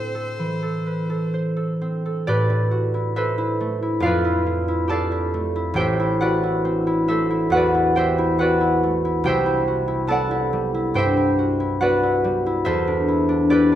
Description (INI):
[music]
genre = classical, impressionist duo for violin and harp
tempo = 70 BPM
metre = 4/4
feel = rubato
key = A dorian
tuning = A4 = 436 Hz
[part]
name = rich violin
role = melody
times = 0.0-1.3 s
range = C5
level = -32 LUFS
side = left 1 dB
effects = none
[part]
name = concert harp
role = accompaniment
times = 0.0-13.8 s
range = A1 to A5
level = -18 LUFS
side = equal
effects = none
[sound]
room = wet recital hall reverb, RT60 1.6 s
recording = none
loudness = -18 LUFS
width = side -11 dB against mid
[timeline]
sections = 0.0-2.3 A section; 2.3-13.8 B section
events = none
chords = 0.0 Am; 2.3 Amadd9; 4.0 Fmaj9; 5.8 Am7; 9.2 Cmaj7; 12.7 Em7